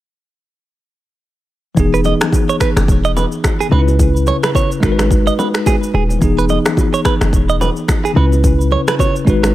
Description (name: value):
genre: afrobeats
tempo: 108 BPM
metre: 4/4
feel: swing 58% on 16ths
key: E major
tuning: A4 = 438 Hz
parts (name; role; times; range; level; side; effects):
- bell-like tine electric piano; accompaniment; 1.7-9.5 s; C#3 to B4; -17 LUFS; left 1 dB; fast stereo tremolo
- hard-hitting 808-style bass; bass; 1.8-9.5 s; D#1 to C#2; -15 LUFS; equal; none
- afro-pop drum kit; drums; 1.8-9.5 s; finger snaps, kick drum, rim click, shaker; -16 LUFS; equal; none
- congas and bongos; percussion; 1.8-9.5 s; none; -25 LUFS; left 2 dB; none
- direct-recorded clean electric guitar; riff; 1.9-9.1 s; G#4 to D#5; -20 LUFS; right 7 dB; digital delay
room: digital ambience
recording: none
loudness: -12 LUFS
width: side -15 dB against mid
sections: 1.8-9.5 A section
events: none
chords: 1.8 Emaj7; 3.7 C#m7; 4.8 G#m7; 6.2 Emaj7; 8.2 C#m7